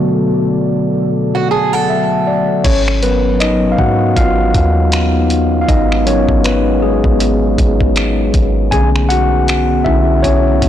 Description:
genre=contemporary R&B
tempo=79 BPM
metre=4/4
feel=swing 58% on 16ths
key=unclear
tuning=A4 = 439 Hz
part: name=mellow tine electric piano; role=accompaniment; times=0.0-10.7 s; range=D3 to A5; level=-14 LUFS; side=left 2 dB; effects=none
part: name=deep dark ambient pad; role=sustained chords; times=0.0-10.7 s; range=B2 to D5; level=-20 LUFS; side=equal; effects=chorus, built-in reverb
part: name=fingerpicked old ladder-braced acoustic guitar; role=arpeggios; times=1.3-2.8 s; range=F#4 to A4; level=-19 LUFS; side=right 8 dB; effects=digital delay
part: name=clean 808-style bass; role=bass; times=2.6-10.7 s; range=Ab1 to Ab2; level=-16 LUFS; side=right 1 dB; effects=none
part: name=dusty soul sampler-style drum kit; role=drums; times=2.6-10.7 s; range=crash cymbal, finger snaps, hi-hat, kick drum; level=-18 LUFS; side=equal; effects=soft clipping on snare
room=light reverb, digital ambience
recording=blown-out, overdriven recording, overdrive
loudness=-11 LUFS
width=side -10 dB against mid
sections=0.0-2.6 A section; 2.6-10.7 B section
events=tine electric piano fill 1.1-2.6; tine electric piano solo 2.6-10.7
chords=0.0 Bm7; 2.6 Abm7; 8.7 Bm7

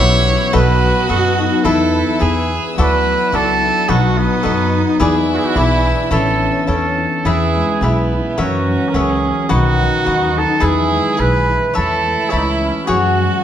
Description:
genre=mexican folk, mariachi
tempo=107 BPM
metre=2/4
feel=straight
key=A major, E major from 7.2 s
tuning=A4 = 439 Hz
part: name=warm trumpet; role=melody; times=0.0-13.4 s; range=B3 to C#5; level=-18 LUFS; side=right 3 dB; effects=none
part: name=rich violin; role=second line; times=0.0-13.4 s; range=B3 to A4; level=-22 LUFS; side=right 4 dB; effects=none
part: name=cavaquinho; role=accompaniment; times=0.0-13.4 s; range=E4 to B5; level=-21 LUFS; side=left 3 dB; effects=none
part: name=dark studio violin section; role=sustained chords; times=0.0-7.2 s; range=G3 to E6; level=-28 LUFS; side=left 1 dB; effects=none
part: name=concert harp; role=arpeggios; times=0.0-13.4 s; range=D#3 to E4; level=-20 LUFS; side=left 3 dB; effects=none
part: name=upright bass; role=bass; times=0.0-13.3 s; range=A1 to F#2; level=-18 LUFS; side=equal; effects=none
room=wet recital hall reverb, RT60 1.4 s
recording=dark, warm production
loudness=-13 LUFS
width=side -10 dB against mid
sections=0.0-7.2 A section; 7.2-13.4 B section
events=none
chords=0.0 Emadd9; 0.5 B7; 1.6 Esus4; 2.2 E; 2.8 Dadd9; 3.9 B7; 5.0 E7; 6.1 A; 7.2 E; 8.4 F#7; 9.5 B; 10.6 E; 11.8 Aadd9/E; 12.9 F#sus2

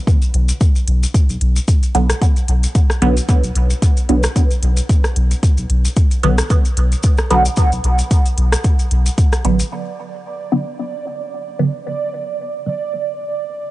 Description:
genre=dub techno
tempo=112 BPM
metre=4/4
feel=swing 55% on 16ths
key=B minor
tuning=A4 = 440 Hz
part: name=electronic kick drum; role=drums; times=0.1-9.3 s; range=none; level=-14 LUFS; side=equal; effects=studio reverb
part: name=maracas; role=percussion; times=0.1-9.7 s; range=none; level=-28 LUFS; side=left 3 dB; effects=none
part: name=soft dub sub bass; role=bass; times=0.3-9.6 s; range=A1 to B1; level=-15 LUFS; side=equal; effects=sidechain pumping
part: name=deep house drum kit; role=drums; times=0.3-9.7 s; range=hi-hat, rim click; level=-24 LUFS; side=equal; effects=low-pass filter on hats, studio reverb, low-pass filter on snare
part: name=filtered dub chord stab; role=stabs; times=1.9-12.8 s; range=D3 to B3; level=-21 LUFS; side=right 1 dB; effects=phaser, vintage 12-bit sampler grit, sidechain pumping, dub echo
part: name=bubbling stepped-filter texture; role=texture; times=9.7-13.7 s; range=D5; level=-24 LUFS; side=right 6 dB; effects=chorus, built-in reverb, sidechain pumping
room=digital ambience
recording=dry, gritty hardware recording, cassette tape, nothing above 10.3 kHz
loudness=-14 LUFS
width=side -17 dB against mid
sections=0.0-9.7 A section; 9.7-13.7 B section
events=filter sweep on synth stab 9.7-13.7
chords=none

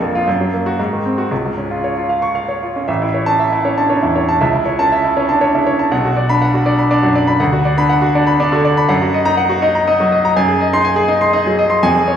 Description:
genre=classical, virtuoso piano study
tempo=120 BPM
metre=3/4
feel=rubato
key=A major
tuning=A4 = 440 Hz
part: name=bright concert grand piano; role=solo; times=0.0-12.2 s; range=A1 to Db6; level=-12 LUFS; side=equal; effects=none
room=wet recital hall reverb, RT60 1.4 s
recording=recorded in a church or concert hall, small room ambience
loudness=-13 LUFS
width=side -8 dB against mid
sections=0.0-2.9 A section; 2.9-12.2 B section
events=none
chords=0.3 Gb; 0.8 Ab7; 1.3 Db; 2.9 A; 4.4 A/C#; 5.9 Bm; 7.4 Bm/D; 8.9 Ebm/Gb; 10.4 Ab7/Gb

